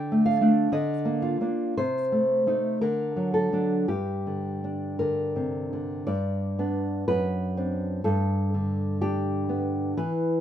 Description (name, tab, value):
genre	romantic piece for solo classical guitar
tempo	53-65 BPM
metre	2/4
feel	rubato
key	G minor, G major from 6.1 s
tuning	A4 = 439 Hz
part	nylon-string guitar	solo	0.0-10.4 s	F#2 to G5	-24 LUFS	equal	none
room	moderate studio reverb, RT60 0.7 s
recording	minimal, uncompressed stereo recording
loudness	-24 LUFS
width	side -10 dB against mid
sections	0.0-6.1 A section; 6.1-10.4 B section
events	none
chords	0.0 Dm; 0.7 Bb/D; 1.8 Adim/C; 2.8 D; 3.9 Gm; 6.1 G; 7.1 D7/F#; 8.0 G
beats	0.72 | 1.77 2.81 | 3.88 4.99 | 6.07 7.08 | 8.05 9.01 | 9.96